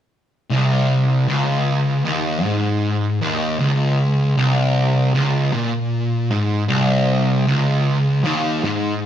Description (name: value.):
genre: metal.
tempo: 78 BPM.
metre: 4/4.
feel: straight.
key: unclear.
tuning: A4 = 440 Hz.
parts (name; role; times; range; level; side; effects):
fuzz guitar; riff; 0.5-9.1 s; C2 to Bb2; -16 LUFS; equal; distortion.
room: moderate large studio reverb, RT60 0.9 s.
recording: band playing live in one room.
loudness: -16 LUFS.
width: side -10 dB against mid.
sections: 0.5-9.1 A section.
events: none.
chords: none.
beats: | 0.51 1.28 2.06 2.83 | 3.61 4.38 5.15 5.93 | 6.70 7.48 8.25 9.02.